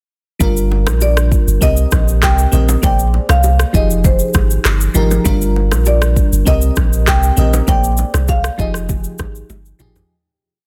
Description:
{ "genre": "afrobeats", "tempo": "99 BPM", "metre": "4/4", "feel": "straight", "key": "unclear", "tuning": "A4 = 440 Hz", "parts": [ { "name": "bell-like FM electric piano", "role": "accompaniment", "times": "0.4-10.1 s", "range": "F3 to Eb5", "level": "-23 LUFS", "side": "equal", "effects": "chorus, tremolo" }, { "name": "punchy sub bass", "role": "bass", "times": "0.4-10.0 s", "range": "F1 to C2", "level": "-16 LUFS", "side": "equal", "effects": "none" }, { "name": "afro-pop drum kit", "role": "drums", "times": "0.4-10.1 s", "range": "handclaps, kick drum, rim click, shaker, toms", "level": "-19 LUFS", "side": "equal", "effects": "soft clipping on snare" }, { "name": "congas and bongos", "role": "percussion", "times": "0.4-10.1 s", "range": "none", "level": "-28 LUFS", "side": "equal", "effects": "none" }, { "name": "marimba with soft mallets", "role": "melody", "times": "1.0-9.5 s", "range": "C5 to G5", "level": "-23 LUFS", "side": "equal", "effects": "delay" } ], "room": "digital ambience", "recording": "dense, heavily limited modern master", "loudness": "-14 LUFS", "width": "mono", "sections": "0.4-10.1 chorus", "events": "fade-out 7.7-10.1; drum fill 9.5-10.1", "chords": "0.4 Gm7; 1.6 Cm7; 2.8 Bb9; 3.7 Fm9; 5.3 Gm7; 6.5 Cm7; 7.7 Bb9; 8.6 Fm9" }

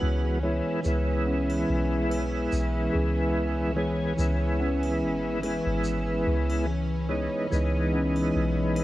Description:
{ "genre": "trip hop", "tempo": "72 BPM", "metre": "4/4", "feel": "swing 53% on 16ths", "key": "unclear", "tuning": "A4 = 439 Hz", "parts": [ { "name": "tonewheel organ", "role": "accompaniment", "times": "0.0-8.8 s", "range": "E3 to G#4", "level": "-28 LUFS", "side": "equal", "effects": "chorus vibrato, slow rotary speaker, tremolo, vintage 12-bit sampler grit, tape echo" }, { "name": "warbly tape-like pad", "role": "sustained chords", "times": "0.0-8.8 s", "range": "E3 to B5", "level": "-34 LUFS", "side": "left 1 dB", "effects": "chorus, built-in reverb" }, { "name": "celesta", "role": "arpeggios", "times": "0.0-8.8 s", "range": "C#4 to C#5", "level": "-34 LUFS", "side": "left 1 dB", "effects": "vintage 12-bit sampler grit, tape echo" }, { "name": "soft 808-style bass", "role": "bass", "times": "0.0-8.8 s", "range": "G#1 to C#2", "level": "-28 LUFS", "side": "equal", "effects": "tube saturation" }, { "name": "bowed-like drone", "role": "texture", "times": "0.0-8.8 s", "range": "C#4", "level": "-39 LUFS", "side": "equal", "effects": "built-in reverb" }, { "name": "tube shaker and triangle", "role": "percussion", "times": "0.8-8.8 s", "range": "none", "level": "-48 LUFS", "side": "left 2 dB", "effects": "none" } ], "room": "light reverb, small room ambience", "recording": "worn, warbling old tape, cassette tape, warbly pitch drift", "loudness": "-24 LUFS", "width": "side -16 dB against mid", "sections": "0.0-8.8 A section", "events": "none", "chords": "0.0 E; 6.7 C#m7" }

